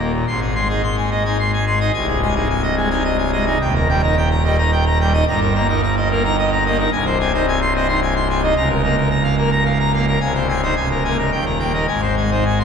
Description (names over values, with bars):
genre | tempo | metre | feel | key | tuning
classical, organ toccata | 108 BPM | 3/4 | straight | Ab major | A4 = 440 Hz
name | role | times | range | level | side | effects
pipe organ, full organ | solo | 0.0-12.6 s | C1 to C6 | -15 LUFS | equal | none
room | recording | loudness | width
wet church reverb, RT60 3.8 s | recorded in a church or concert hall | -15 LUFS | side -6 dB against mid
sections
0.3-12.6 A section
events
none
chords
0.3 Ab; 1.9 Ab/C; 3.6 Eb; 5.3 Eb/G; 6.9 Ab/C; 8.6 Bbm/Db; 10.2 Ab/C; 10.8 Bbm7/Db; 11.3 Eb; 11.9 Ab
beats
| 0.27 0.83 1.38 | 1.94 2.49 3.05 | 3.60 4.16 4.71 | 5.26 5.81 6.36 | 6.91 7.46 8.01 | 8.55 9.10 9.65 | 10.21 10.76 11.32 | 11.89 12.46